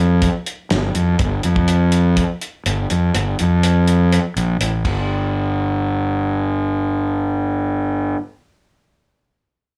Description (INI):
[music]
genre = psychedelic rock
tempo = 123 BPM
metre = 4/4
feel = straight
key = G minor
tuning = A4 = 440 Hz
[part]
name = fuzz fingered electric bass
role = bass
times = 0.0-8.1 s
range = G1 to F2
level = -19 LUFS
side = equal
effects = overdrive
[part]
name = cloth-damped thuddy drum kit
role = drums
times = 0.2-5.0 s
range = hi-hat, kick drum, ride cymbal, snare drum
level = -25 LUFS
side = equal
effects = none
[sound]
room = little or no reverb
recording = small room ambience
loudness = -19 LUFS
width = mono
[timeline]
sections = 0.0-5.1 A section; 5.1-9.0 B section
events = none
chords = none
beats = 0.23 0.71 | 1.20 1.68 2.17 2.66 | 3.14 3.63 4.12 4.60 | 5.09 5.57 6.06 6.55 | 7.03 7.52 8.01